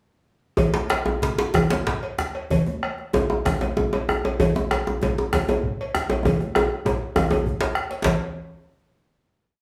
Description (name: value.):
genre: west african traditional, West African drum ensemble.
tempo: 124-140 BPM (dotted quarters).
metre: 12/8.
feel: straight.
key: none.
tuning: none.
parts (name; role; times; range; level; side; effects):
bombo; percussion; 0.6-8.2 s; none; -30 LUFS; equal; none.
congas; percussion; 0.6-8.2 s; none; -29 LUFS; equal; none.
cowbell; percussion; 0.6-8.2 s; none; -33 LUFS; equal; none.
djembe; percussion; 0.6-8.2 s; none; -35 LUFS; equal; none.
djembe; percussion; 0.6-8.2 s; none; -25 LUFS; equal; none.
room: wet large studio reverb, RT60 0.9 s.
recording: band playing live in one room, studio reverb.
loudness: -23 LUFS.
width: mono.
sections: 0.6-8.1 A section; 8.1-9.6 final hit.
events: speeding up 0.6-9.6; drum fill 6.3-8.1.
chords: none.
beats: | 0.58 1.06 1.54 2.03 | 2.50 2.98 3.46 3.93 | 4.40 4.87 5.33 5.80 | 6.25 6.71 7.16 7.61 | 8.05.